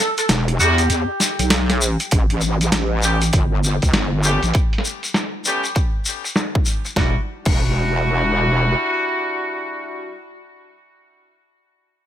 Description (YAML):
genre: glitch hop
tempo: 99 BPM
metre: 4/4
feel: swing 63% on 16ths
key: E dorian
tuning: A4 = 442 Hz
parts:
  - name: sync lead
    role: melody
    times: 0.0-1.5 s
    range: G4 to A4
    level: -25 LUFS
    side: equal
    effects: lush chorus, ping-pong delay
  - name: boom bap sampler-style drum kit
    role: drums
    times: 0.2-7.6 s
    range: crash cymbal, hi-hat, snare drum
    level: -22 LUFS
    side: equal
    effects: overdrive, low-pass filter on hats, low-pass filter on snare, low-pass filter on cymbals, low-pass filter on room
  - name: shekere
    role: percussion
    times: 0.2-6.9 s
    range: none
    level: -24 LUFS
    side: left 3 dB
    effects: none
  - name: wobble bass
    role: bass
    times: 0.3-8.7 s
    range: E1 to E2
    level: -19 LUFS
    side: equal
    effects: chorus, tube saturation
  - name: clear horn section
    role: stabs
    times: 0.6-10.1 s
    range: G3 to G4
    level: -22 LUFS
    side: equal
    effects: sidechain pumping, ping-pong delay
  - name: electronic kick drum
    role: drums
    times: 2.1-7.6 s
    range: none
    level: -19 LUFS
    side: equal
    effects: none
room: light reverb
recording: bright 1980s-style digital production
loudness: -16 LUFS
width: side -11 dB against mid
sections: 0.0-2.1 A section; 2.1-7.0 B section; 7.0-9.4 C section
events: break 0.0-2.1; drop 0.0-2.1; filter sweep on drum 2.1-7.0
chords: 0.0 Em; 2.1 A7; 7.0 Em9